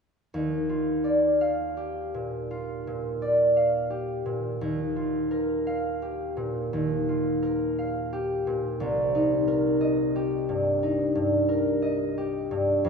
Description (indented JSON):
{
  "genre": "classical, solo harp piece",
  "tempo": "58 BPM",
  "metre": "4/4",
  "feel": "uneven beats, rubato",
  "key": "Eb major",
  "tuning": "A4 = 440 Hz",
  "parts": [
    { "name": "concert harp", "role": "solo", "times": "0.3-12.9 s", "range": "C2 to F5", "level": "-24 LUFS", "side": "equal", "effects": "none" }
  ],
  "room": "wet scoring stage reverb, RT60 1.8 s",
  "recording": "minimal, uncompressed stereo recording",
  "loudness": "-24 LUFS",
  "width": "side -5 dB against mid",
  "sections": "0.3-12.9 A section",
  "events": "none",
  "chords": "0.3 Ebmaj9; 8.8 Cm7"
}